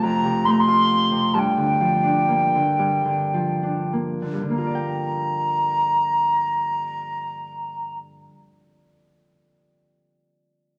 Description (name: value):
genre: celtic folk, Celtic slow air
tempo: 45-72 BPM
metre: 3/4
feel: rubato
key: G minor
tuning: A4 = 441 Hz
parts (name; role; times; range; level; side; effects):
- bright wooden flute; melody; 0.0-8.0 s; G5 to C6; -23 LUFS; equal; none
- Celtic harp; accompaniment; 0.0-8.3 s; F2 to G5; -26 LUFS; equal; none
room: wet large studio reverb, RT60 1.3 s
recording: none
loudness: -21 LUFS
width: mono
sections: 0.0-4.5 A section; 4.5-8.3 B section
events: slowing down 0.0-4.5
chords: 0.0 F; 1.3 Gm7